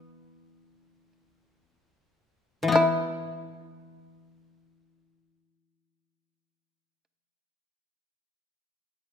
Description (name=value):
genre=japanese traditional, Japanese chamber music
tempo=free time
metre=none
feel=none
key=unclear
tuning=A4 = 440 Hz
part: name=shamisen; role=melody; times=0.0-7.0 s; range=E4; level=-25 LUFS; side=right 2 dB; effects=none
part: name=koto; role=accompaniment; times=0.0-7.0 s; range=E3 to E4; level=-25 LUFS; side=left 5 dB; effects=none
room=light reverb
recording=minimal, uncompressed stereo recording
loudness=-22 LUFS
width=side -8 dB against mid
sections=0.0-2.8 A section; 2.8-7.3 B section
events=slowing down 0.0-2.8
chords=none